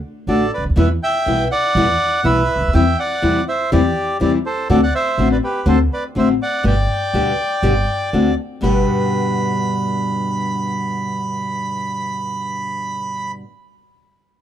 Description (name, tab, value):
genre	tango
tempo	122 BPM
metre	4/4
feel	rubato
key	G major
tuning	A4 = 440 Hz
part	bandoneon	melody	0.3-13.3 s	G4 to B5	-20 LUFS	right 1 dB	none
part	nylon-string guitar	accompaniment	0.3-13.5 s	G2 to G4	-19 LUFS	left 2 dB	none
part	upright bass	bass	0.3-8.8 s	G1 to E2	-20 LUFS	right 1 dB	none
room	small room ambience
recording	dry, close 1970s-style studio recording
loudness	-16 LUFS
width	side -10 dB against mid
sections	0.0-8.6 A section; 8.6-12.6 B section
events	none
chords	0.0 D; 0.8 Em; 2.7 C/E; 4.7 D7; 6.7 G; 8.1 D7; 8.6 G